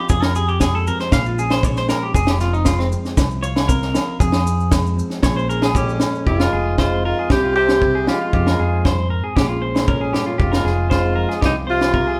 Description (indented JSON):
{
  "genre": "highlife guitar band",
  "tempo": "116 BPM",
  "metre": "4/4",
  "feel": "straight",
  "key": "F minor",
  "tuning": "A4 = 440 Hz",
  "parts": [
    { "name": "mellow electric guitar", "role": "accompaniment", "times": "0.0-12.2 s", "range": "F2 to Ab4", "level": "-29 LUFS", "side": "equal", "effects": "none" },
    { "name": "clean electric guitar", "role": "arpeggios", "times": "0.0-12.2 s", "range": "C4 to F5", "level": "-26 LUFS", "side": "equal", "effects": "none" },
    { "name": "fingered electric bass", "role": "bass", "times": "0.1-12.2 s", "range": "F1 to F2", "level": "-24 LUFS", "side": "equal", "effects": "none" },
    { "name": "tight funk drum kit", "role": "drums", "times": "0.1-12.1 s", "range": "kick drum, snare drum", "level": "-21 LUFS", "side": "equal", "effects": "none" },
    { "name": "maracas", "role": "percussion", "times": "0.1-6.2 s", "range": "none", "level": "-39 LUFS", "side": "equal", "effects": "none" },
    { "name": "agogo bells", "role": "percussion", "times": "0.2-11.9 s", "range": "none", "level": "-34 LUFS", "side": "equal", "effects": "none" },
    { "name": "warm alto saxophone", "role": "melody", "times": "5.8-12.2 s", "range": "Db4 to G4", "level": "-23 LUFS", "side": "equal", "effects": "none" },
    { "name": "growling trombone", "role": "second line", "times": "5.8-12.2 s", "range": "F2 to C3", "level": "-30 LUFS", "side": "equal", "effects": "none" }
  ],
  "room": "moderate stone room reverb, RT60 1.1 s",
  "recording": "band playing live in one room",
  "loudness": "-18 LUFS",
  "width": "mono",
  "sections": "0.0-6.3 A section; 6.3-12.2 B section",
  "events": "clean electric guitar solo 0.0-6.3",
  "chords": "0.1 Fmadd9; 1.1 Bbm7; 2.2 Fm; 3.2 Csus4; 4.2 Fm; 5.2 Bbm7; 6.3 Fm; 7.3 Csus4; 8.3 Fmadd9; 9.4 Bbm7; 10.4 Fm; 11.4 Csus4"
}